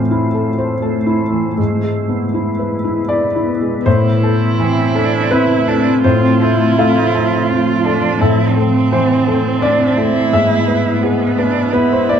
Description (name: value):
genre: neoclassical piano and strings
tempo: 77-86 BPM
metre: 3/4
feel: rubato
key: A harmonic minor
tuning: A4 = 440 Hz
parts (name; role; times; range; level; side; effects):
- felt-muted upright piano; accompaniment; 0.0-12.2 s; G#2 to F5; -15 LUFS; left 1 dB; none
- granular cloud pad; sustained chords; 0.0-12.2 s; F3 to C5; -20 LUFS; left 1 dB; built-in reverb
- rich viola; accompaniment; 3.9-12.2 s; B3 to F4; -20 LUFS; right 4 dB; none
- rich cello; second line; 4.6-12.2 s; B3 to F4; -19 LUFS; right 6 dB; none
room: little or no reverb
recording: dark, warm production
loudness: -12 LUFS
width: side -8 dB against mid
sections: 0.0-3.9 A section; 3.9-12.2 B section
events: none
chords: 0.0 Am; 1.6 E/G#; 3.9 Am; 6.0 F; 8.2 Am; 10.3 E/G#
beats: 0.11 0.83 | 1.58 2.33 3.09 | 3.86 4.59 5.31 | 6.03 6.78 7.50 | 8.20 8.91 9.62 | 10.32 11.03 11.72